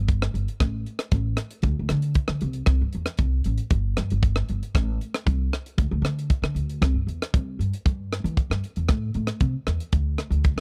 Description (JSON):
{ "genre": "highlife guitar band", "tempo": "116 BPM", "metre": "4/4", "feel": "straight", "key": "unclear", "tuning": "A4 = 437 Hz", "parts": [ { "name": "upright bass", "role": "bass", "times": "0.0-10.6 s", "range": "G1 to E3", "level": "-27 LUFS", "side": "equal", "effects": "none" }, { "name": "tight funk drum kit", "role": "drums", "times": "0.1-10.6 s", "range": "hi-hat, kick drum, rim click", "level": "-25 LUFS", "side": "equal", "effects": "none" } ], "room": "little or no reverb", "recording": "dry, close 1970s-style studio recording", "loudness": "-25 LUFS", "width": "mono", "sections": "0.0-7.9 A section; 7.9-10.6 B section", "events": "none", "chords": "none", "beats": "0.09 0.61 1.12 | 1.64 2.16 2.68 3.19 | 3.71 4.23 4.75 5.26 | 5.78 6.30 6.82 7.34 | 7.86 8.38 8.90 9.41 | 9.94 10.45" }